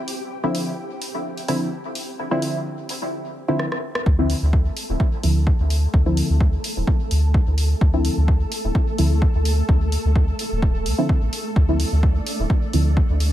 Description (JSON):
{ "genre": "dub techno", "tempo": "128 BPM", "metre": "4/4", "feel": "swing 53% on 16ths", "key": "D minor", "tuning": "A4 = 440 Hz", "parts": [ { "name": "filtered dub chord stab", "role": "stabs", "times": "0.0-12.9 s", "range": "D3 to E4", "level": "-25 LUFS", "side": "equal", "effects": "chorus, phaser, cassette tape, sidechain pumping, dub echo" }, { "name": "flickering grainy texture", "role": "texture", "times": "0.0-13.3 s", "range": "A3 to A4", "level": "-31 LUFS", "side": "equal", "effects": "built-in reverb, sidechain pumping" }, { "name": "deep house drum kit", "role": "drums", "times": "0.1-13.3 s", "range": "hi-hat, rim click", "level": "-29 LUFS", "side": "equal", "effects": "none" }, { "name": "soft dub sub bass", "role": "bass", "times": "4.1-13.3 s", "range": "D1 to D2", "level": "-19 LUFS", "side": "equal", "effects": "sidechain pumping" }, { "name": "electronic kick drum", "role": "drums", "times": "4.1-13.1 s", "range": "none", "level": "-19 LUFS", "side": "equal", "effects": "none" } ], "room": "digital ambience", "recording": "echo-heavy mix", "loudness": "-18 LUFS", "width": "side -13 dB against mid", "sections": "0.0-4.1 A section; 4.1-13.3 B section", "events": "drum fill 3.6-4.1; filter sweep on synth stab 4.1-13.3", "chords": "0.0 Dm9" }